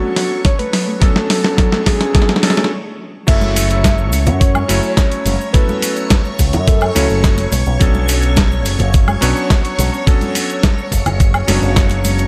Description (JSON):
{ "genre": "nu-disco, nu disco", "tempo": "106 BPM", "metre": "4/4", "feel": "straight", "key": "F# minor", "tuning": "A4 = 440 Hz", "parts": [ { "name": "soft octave-layered synth lead", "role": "melody", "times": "0.0-7.5 s", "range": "F#4 to E5", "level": "-24 LUFS", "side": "equal", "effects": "chorus, tape echo" }, { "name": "clear electric grand piano", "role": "accompaniment", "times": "0.0-12.3 s", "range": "F#3 to C#5", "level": "-24 LUFS", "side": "equal", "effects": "sidechain pumping, tape echo" }, { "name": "string machine, full ensemble", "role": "sustained chords", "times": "0.0-12.3 s", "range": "C#5 to C#6", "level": "-28 LUFS", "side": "equal", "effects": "ensemble chorus, sidechain pumping" }, { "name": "soft round pluck", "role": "arpeggios", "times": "0.0-2.6 s", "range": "F#3 to C#4", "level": "-25 LUFS", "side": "equal", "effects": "chorus, cassette tape, sidechain pumping, tape echo" }, { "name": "dusty soul sampler-style drum kit", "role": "drums", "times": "0.2-12.3 s", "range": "crash cymbal, hi-hat, snare drum, woodblock", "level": "-21 LUFS", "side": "equal", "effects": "none" }, { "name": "electronic kick drum", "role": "drums", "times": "0.5-11.9 s", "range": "none", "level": "-15 LUFS", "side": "equal", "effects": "none" }, { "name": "picked electric bass with an envelope filter", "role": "bass", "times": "3.3-12.3 s", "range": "F#1 to F#2", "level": "-19 LUFS", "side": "equal", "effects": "sidechain pumping" }, { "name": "cabasa and congas", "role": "percussion", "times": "3.3-12.3 s", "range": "none", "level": "-26 LUFS", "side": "equal", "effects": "none" } ], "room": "digital ambience", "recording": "none", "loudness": "-14 LUFS", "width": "mono", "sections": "0.0-3.3 A section; 3.3-12.3 B section", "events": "build-up 0.0-3.3; drum fill 0.0-2.7; filter sweep on synth arpeggio sound 0.0-3.3; stop 2.7-3.3; drop 3.3-12.3", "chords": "0.0 Bm9; 3.3 F#m7; 7.5 Bm9" }